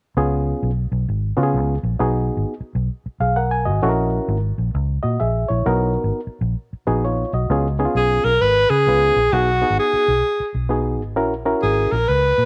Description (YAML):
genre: uptempo 1960s-style soul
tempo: 131 BPM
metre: 4/4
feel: swing 64% on 8ths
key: Db mixolydian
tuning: A4 = 440 Hz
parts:
  - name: barky reed electric piano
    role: accompaniment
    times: 0.2-12.0 s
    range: Cb4 to Ab5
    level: -24 LUFS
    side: equal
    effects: overdrive
  - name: vintage muted fingered electric bass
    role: bass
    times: 0.2-12.5 s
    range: Ab1 to Db3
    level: -24 LUFS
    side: equal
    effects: none
  - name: breathy alto saxophone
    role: melody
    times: 8.0-12.5 s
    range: Gb4 to Cb5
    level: -19 LUFS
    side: equal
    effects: none
room: light reverb, small room ambience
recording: none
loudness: -20 LUFS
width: mono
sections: 0.2-7.5 A section; 7.5-12.5 B section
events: reed electric piano fill 3.1-3.8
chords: 0.2 Db7; 2.0 Cb6; 3.8 Gb7; 5.7 Cbmaj7; 7.5 Db7; 9.3 Cb6; 11.2 Gb7